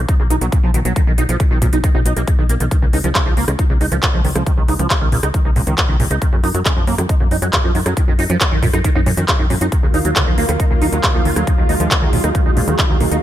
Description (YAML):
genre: uplifting trance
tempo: 137 BPM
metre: 4/4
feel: straight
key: Eb minor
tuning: A4 = 440 Hz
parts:
  - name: tight sequencer bass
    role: bass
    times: 0.0-13.2 s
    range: B1 to Gb2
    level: -19 LUFS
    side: equal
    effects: sidechain pumping
  - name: liquid acid bass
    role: arpeggios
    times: 0.1-13.2 s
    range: Bb2 to D#4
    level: -21 LUFS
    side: right 2 dB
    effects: phaser, ensemble chorus, cassette tape, sidechain pumping, ping-pong delay
  - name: big-room dance drum kit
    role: drums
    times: 0.1-13.2 s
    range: handclaps, hi-hat, rim click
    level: -20 LUFS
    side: equal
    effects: overdrive, studio reverb
  - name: electronic kick drum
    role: drums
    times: 0.1-12.9 s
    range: none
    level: -16 LUFS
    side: equal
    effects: studio reverb
  - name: lush unison pad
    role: sustained chords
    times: 9.7-13.2 s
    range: Eb3 to F4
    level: -21 LUFS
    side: right 2 dB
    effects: chorus, vintage 12-bit sampler grit, sidechain pumping
room: light reverb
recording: none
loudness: -13 LUFS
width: side -12 dB against mid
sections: 0.0-13.2 A section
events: none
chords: 0.0 B; 2.7 Dbsus2; 6.2 Gb5; 9.7 Ebmadd9